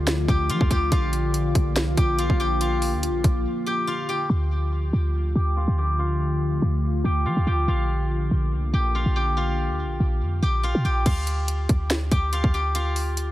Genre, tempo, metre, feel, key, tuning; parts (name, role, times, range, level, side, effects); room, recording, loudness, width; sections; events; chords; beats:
hip hop, trap; 142 BPM; 4/4; half-time; D minor; A4 = 441 Hz
steel-string zither; melody; 0.0-13.3 s; F4 to G5; -28 LUFS; left 1 dB; low-pass filter, tape echo
deep dark ambient pad; sustained chords; 0.0-11.0 s; D3 to F4; -28 LUFS; left 1 dB; chorus, built-in reverb, low-pass filter
clean 808-style bass; bass; 0.0-13.3 s; Bb1 to F3; -23 LUFS; equal
trap drum kit; drums; 0.1-3.3, 11.1-13.3 s; crash cymbal, hi-hat, kick drum, snare drum; -23 LUFS; equal; overdrive
digital ambience; heavily compressed radio sound; -21 LUFS; side -15 dB against mid
0.0-4.3 A section; 4.3-11.1 B section; 11.1-13.3 C section
break 3.5-4.3; filter sweep 4.3-11.1
0.0 Dm; 0.9 Bb; 4.3 Dm; 7.7 Bb; 11.1 Dm
0.07 0.50 | 0.92 1.34 1.76 2.19 | 2.61 3.03 3.45 3.88 | 4.30 4.72 5.14 5.57 | 5.99 6.41 6.83 7.26 | 7.68 8.10 8.52 8.95 | 9.37 9.79 10.21 10.64 | 11.06 11.48 11.90 12.33 | 12.75 13.17